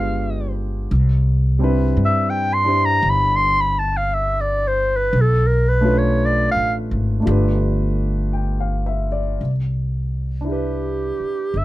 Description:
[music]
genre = jazz ballad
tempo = 56 BPM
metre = 4/4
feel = swing 67% on 8ths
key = unclear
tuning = A4 = 439 Hz
[part]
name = breathy clarinet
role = melody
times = 0.0-11.6 s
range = G4 to C6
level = -19 LUFS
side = equal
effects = none
[part]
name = warm concert grand piano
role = accompaniment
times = 0.0-11.6 s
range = G3 to G5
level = -24 LUFS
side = equal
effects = none
[part]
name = upright bass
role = bass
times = 0.0-11.6 s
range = G1 to G2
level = -20 LUFS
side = equal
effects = none
[sound]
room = little or no reverb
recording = close, detailed microphones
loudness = -17 LUFS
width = side -16 dB against mid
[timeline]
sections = 0.0-9.4 A section; 9.4-11.6 B section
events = clarinet solo 0.0-9.4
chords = 0.0 G7b9; 0.9 Cmaj7; 5.1 Bm7b5; 7.3 G9; 9.4 Cmaj9

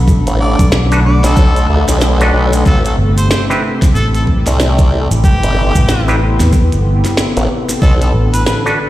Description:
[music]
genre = glitch hop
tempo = 93 BPM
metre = 4/4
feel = swing 60% on 16ths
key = A dorian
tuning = A4 = 436 Hz
[part]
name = warm analog pad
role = sustained chords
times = 0.0-8.9 s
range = C3 to A4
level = -20 LUFS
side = left 1 dB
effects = lush chorus, sidechain pumping
[part]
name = fingered electric bass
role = bass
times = 0.0-8.4 s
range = G1 to E2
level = -12 LUFS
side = equal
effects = none
[part]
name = granular cloud pad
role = texture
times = 0.0-8.9 s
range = D4 to C6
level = -22 LUFS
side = equal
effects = built-in reverb, sidechain pumping
[part]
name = electronic kick drum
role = drums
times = 0.1-8.0 s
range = none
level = -11 LUFS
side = equal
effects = overdrive
[part]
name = maracas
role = percussion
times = 0.1-8.8 s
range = none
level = -28 LUFS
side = right 3 dB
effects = none
[part]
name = formant-sweep wobble bass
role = bass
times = 0.3-8.1 s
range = G1 to D2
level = -12 LUFS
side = equal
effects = chorus
[part]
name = glitchy drum kit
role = drums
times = 0.3-8.6 s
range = hi-hat, snare drum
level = -20 LUFS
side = equal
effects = none
[part]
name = clear harmonica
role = melody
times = 0.4-8.6 s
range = G4 to D5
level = -22 LUFS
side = left 1 dB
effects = vintage 12-bit sampler grit, ping-pong delay
[part]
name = auto-wah clav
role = stabs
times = 0.9-8.8 s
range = C4 to B4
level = -19 LUFS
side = equal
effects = sidechain pumping, ping-pong delay
[sound]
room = light reverb, digital ambience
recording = played on a big sound system in a bare room, stone room reverb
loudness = -10 LUFS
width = side -15 dB against mid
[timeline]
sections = 0.0-8.9 A section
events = none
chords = 0.0 Bm7; 2.7 Am7; 7.8 Bm7

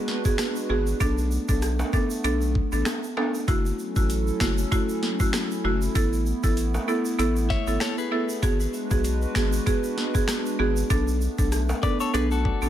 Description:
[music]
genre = dancehall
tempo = 97 BPM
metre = 4/4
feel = swing 56% on 16ths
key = unclear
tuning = A4 = 440 Hz
[part]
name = hollow soft pad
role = sustained chords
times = 0.0-12.7 s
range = F#3 to B4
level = -32 LUFS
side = right 2 dB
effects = chorus, sidechain pumping
[part]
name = island pop drum kit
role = drums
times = 0.1-12.6 s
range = finger snaps, hi-hat, kick drum, rim click, snare drum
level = -26 LUFS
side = equal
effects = overdrive
[part]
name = buzzing marimba with hard mallets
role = accompaniment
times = 0.2-12.7 s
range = A3 to A4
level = -27 LUFS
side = right 1 dB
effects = sidechain pumping
[part]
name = tube shaker and timbales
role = percussion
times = 0.2-12.7 s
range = none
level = -37 LUFS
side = right 1 dB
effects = none
[part]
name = round analog bass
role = bass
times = 0.7-12.7 s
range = F#1 to B1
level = -26 LUFS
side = equal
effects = none
[part]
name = clean electric guitar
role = arpeggios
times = 7.5-12.7 s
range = F#4 to E5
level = -31 LUFS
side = left 7 dB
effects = digital delay
[sound]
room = digital ambience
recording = none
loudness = -22 LUFS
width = side -11 dB against mid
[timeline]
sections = 0.0-12.7 A section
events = none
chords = 0.0 G#m7b5; 1.0 Bm7; 3.5 F#m7; 6.0 Asus2; 8.4 G#m7b5; 10.9 Bm7

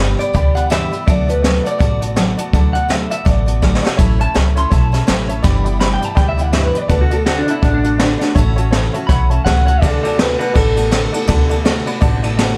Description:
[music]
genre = rockabilly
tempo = 164 BPM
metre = 4/4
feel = swing 59% on 8ths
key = D major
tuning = A4 = 440 Hz
[part]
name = honky-tonk upright piano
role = accompaniment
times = 0.0-12.5 s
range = C#5 to B5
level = -29 LUFS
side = equal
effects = none
[part]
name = picked steel-string acoustic guitar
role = accompaniment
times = 0.0-12.6 s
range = G2 to G4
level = -24 LUFS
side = equal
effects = none
[part]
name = upright bass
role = bass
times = 0.0-12.5 s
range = G1 to D2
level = -20 LUFS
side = equal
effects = none
[part]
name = electric guitar through a small old amp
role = melody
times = 0.2-11.6 s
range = D4 to C6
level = -22 LUFS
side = equal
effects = tape echo
[part]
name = jazz brush drum kit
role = drums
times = 0.2-12.5 s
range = hi-hat, kick drum, ride cymbal, snare drum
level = -19 LUFS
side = equal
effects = none
[sound]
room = light reverb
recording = none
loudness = -15 LUFS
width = mono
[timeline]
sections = 0.0-9.8 A section; 9.8-12.6 B section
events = drum fill 3.6-4.0; clean electric guitar solo 9.8-12.6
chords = 0.0 G6; 1.1 D6; 4.0 A6; 5.4 G6; 6.9 D6; 8.4 A6; 9.8 D6

